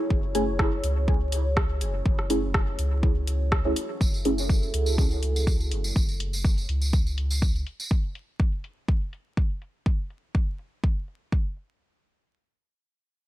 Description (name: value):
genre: dub techno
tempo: 123 BPM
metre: 4/4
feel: swing 54% on 16ths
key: F# minor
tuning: A4 = 440 Hz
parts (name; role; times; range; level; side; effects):
- dark analog pad; sustained chords; 0.0-7.9 s; E4 to C#5; -34 LUFS; right 1 dB; chorus, phaser, sidechain pumping
- soft dub sub bass; bass; 0.1-7.6 s; F#1 to C#2; -27 LUFS; equal; sidechain pumping
- electronic kick drum; drums; 0.1-11.4 s; none; -24 LUFS; equal; none
- deep mellow chord stab; stabs; 0.3-4.3 s; A3 to G#4; -29 LUFS; equal; chorus, phaser, sidechain pumping, dub echo
- deep house drum kit; drums; 0.3-11.7 s; hi-hat, rim click; -31 LUFS; equal; low-pass filter on hats, low-pass filter on snare, dub echo
- tambourine; percussion; 4.0-7.9 s; none; -35 LUFS; right 2 dB; none
room: digital ambience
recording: vinyl crackle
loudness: -24 LUFS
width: side -15 dB against mid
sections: 0.0-4.0 A section; 4.0-11.8 B section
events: filter sweep on synth stab 0.0-4.0; filter sweep on drum 4.0-11.8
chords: 0.0 F#7sus2; 4.0 F#m9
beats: | 0.10 0.59 1.08 1.57 | 2.06 2.54 3.03 3.52 | 4.01 4.49 4.98 5.47 | 5.96 6.45 6.93 7.42 | 7.91 8.40 8.88 9.37 | 9.86 10.35 10.84 11.32